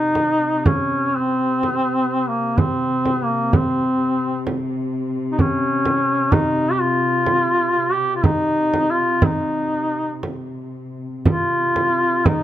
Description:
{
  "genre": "caucasian folk, Caucasian lament",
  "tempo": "58-65 BPM",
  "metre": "3/4",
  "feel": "rubato",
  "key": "C phrygian",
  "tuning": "A4 = 436 Hz",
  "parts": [
    { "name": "warm duduk", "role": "melody", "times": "0.0-12.4 s", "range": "Bb3 to G4", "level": "-18 LUFS", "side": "equal", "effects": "none" },
    { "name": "muted chamber cello section", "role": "drone", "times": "0.0-12.4 s", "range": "C3", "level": "-27 LUFS", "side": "left 2 dB", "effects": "none" },
    { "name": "frame drum", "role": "percussion", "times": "0.2-12.4 s", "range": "none", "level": "-19 LUFS", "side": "right 2 dB", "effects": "none" }
  ],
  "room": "light reverb",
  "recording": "close, detailed microphones",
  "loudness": "-17 LUFS",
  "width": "side -12 dB against mid",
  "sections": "0.0-12.4 A section",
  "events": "none",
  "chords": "none",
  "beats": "0.65 1.63 | 2.58 3.53 4.46 | 5.39 6.32 7.27 | 8.24 9.23 10.24 | 11.26 12.27"
}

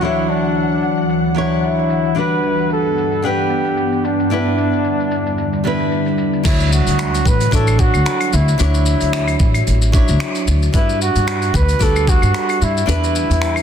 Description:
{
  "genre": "sunset chillout",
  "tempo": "112 BPM",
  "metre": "4/4",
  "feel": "swing 55% on 16ths",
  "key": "D major",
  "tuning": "A4 = 439 Hz",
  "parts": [
    { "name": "mellow flugelhorn", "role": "melody", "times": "0.0-13.6 s", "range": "D4 to B4", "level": "-20 LUFS", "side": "equal", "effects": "tape echo" },
    { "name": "flamenco guitar", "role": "accompaniment", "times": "0.0-13.6 s", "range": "F#3 to F#5", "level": "-21 LUFS", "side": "equal", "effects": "auto-pan, digital delay" },
    { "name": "ethereal airy pad", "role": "sustained chords", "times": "0.0-6.4 s", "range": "D2 to F#5", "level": "-20 LUFS", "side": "equal", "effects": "ensemble chorus, built-in reverb" },
    { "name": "vintage brush drum kit", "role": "drums", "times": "0.0-13.6 s", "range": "claves, crash cymbal, finger snaps, hi-hat, shaker", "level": "-25 LUFS", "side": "left 2 dB", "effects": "low-pass filter on cymbals, low-pass filter on hats, low-pass filter on perc, soft clipping on snare, low-pass filter on snare, low-pass filter on room" },
    { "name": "upright bass", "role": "bass", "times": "6.5-13.6 s", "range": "A1 to G2", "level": "-16 LUFS", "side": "equal", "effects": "none" },
    { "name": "electronic kick drum", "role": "drums", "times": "6.5-12.2 s", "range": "none", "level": "-16 LUFS", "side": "equal", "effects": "none" }
  ],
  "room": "moderate concert hall reverb, RT60 2.4 s",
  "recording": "dense, heavily limited modern master",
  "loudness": "-14 LUFS",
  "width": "side -8 dB against mid",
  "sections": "0.0-6.5 A section; 6.5-13.6 B section",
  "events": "none",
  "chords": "0.0 Dmaj9; 2.2 Gmaj7; 4.3 Em7; 6.5 Dmaj9; 10.7 Gmaj7; 12.9 Em7",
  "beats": "| 0.02 0.56 1.09 1.63 | 2.17 2.70 3.24 3.77 | 4.31 4.84 5.38 5.92 | 6.45 6.99 7.52 8.06 | 8.60 9.13 9.67 10.20 | 10.74 11.27 11.81 12.35 | 12.88 13.42"
}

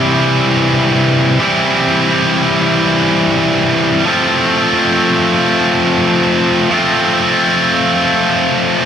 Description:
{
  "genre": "rock",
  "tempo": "free time",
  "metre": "none",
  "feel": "none",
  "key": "unclear",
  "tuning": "A4 = 440 Hz",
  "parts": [
    { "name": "heavy high-gain guitar", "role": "solo", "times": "0.0-8.9 s", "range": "C3 to F4", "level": "-10 LUFS", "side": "equal", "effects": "distortion, tape echo" }
  ],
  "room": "moderate studio reverb, RT60 0.6 s",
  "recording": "none",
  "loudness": "-10 LUFS",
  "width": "side -8 dB against mid",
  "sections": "0.0-8.9 A section",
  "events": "none",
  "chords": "0.0 C; 4.1 F",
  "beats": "free time"
}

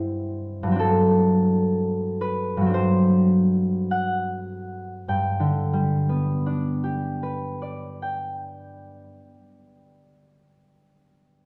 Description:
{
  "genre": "classical, solo harp piece",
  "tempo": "49-68 BPM",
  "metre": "4/4",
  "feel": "rubato",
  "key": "G major",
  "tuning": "A4 = 440 Hz",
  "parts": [
    { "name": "concert harp", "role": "solo", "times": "0.0-10.6 s", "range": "G2 to G5", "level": "-24 LUFS", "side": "equal", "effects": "none" }
  ],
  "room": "wet recital hall reverb, RT60 1.4 s",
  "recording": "recorded in a church or concert hall",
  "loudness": "-23 LUFS",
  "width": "mono",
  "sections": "0.0-5.1 A section; 5.1-9.2 B section",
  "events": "slowing down 0.0-5.1",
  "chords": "0.0 C/G; 0.8 D7/G; 5.1 G",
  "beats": "| 0.79 1.72 2.73 3.92 | 5.08 6.11 7.13 8.15"
}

